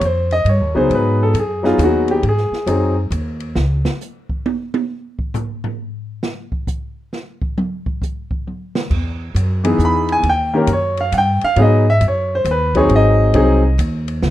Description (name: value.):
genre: jazz piano trio.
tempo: 135 BPM.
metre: 3/4.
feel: swing 66% on 8ths.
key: unclear.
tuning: A4 = 440 Hz.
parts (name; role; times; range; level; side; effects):
clear concert grand piano; melody; 0.0-2.9, 9.6-13.8 s; D#3 to B5; -15 LUFS; left 1 dB; none.
upright bass; bass; 0.0-3.8, 8.9-14.3 s; G#1 to G#2; -17 LUFS; equal; none.
open jazz drum kit; drums; 0.0-14.3 s; crash cymbal, hi-hat, kick drum, ride cymbal, snare drum, toms; -25 LUFS; right 1 dB; none.
room: studio reverb.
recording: rough home demo mix.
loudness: -15 LUFS.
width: side -14 dB against mid.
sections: 0.0-8.9 A section; 8.9-14.3 A section.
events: grand piano solo 0.0-14.3; drum solo 3.6-8.9.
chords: 0.0 D#7; 0.9 G#m7; 3.6 N.C.; 8.9 Emaj7; 10.2 D#7; 11.6 G#m7; 12.9 G#7.